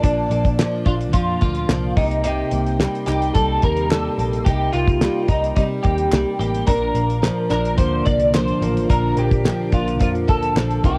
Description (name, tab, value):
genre	indie pop, bedroom pop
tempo	108 BPM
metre	4/4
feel	straight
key	Bb major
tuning	A4 = 441 Hz
part	electric guitar through a small old amp	melody	0.0-11.0 s	D4 to D5	-25 LUFS	equal	ensemble chorus, cassette tape
part	nylon-string guitar	accompaniment	0.0-11.0 s	Bb2 to Eb4	-26 LUFS	equal	analog chorus, warbly pitch drift, cassette tape
part	string machine, violas	sustained chords	0.0-11.0 s	Bb3 to D6	-39 LUFS	equal	none
part	vintage muted picked electric bass	bass	0.0-11.0 s	A1 to C3	-26 LUFS	equal	none
part	damped 70s drum kit	drums	0.0-11.0 s	hi-hat, kick drum, snare drum	-21 LUFS	equal	vintage 12-bit sampler grit
part	group handclap	percussion	0.6-10.7 s	none	-35 LUFS	equal	none
part	tine electric piano	accompaniment	6.7-11.0 s	F3 to Bb4	-28 LUFS	equal	cassette tape
room	light reverb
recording	home recording on cassette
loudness	-19 LUFS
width	mono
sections	0.0-11.0 A section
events	none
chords	0.0 Bb; 2.0 Cm7; 6.7 Bb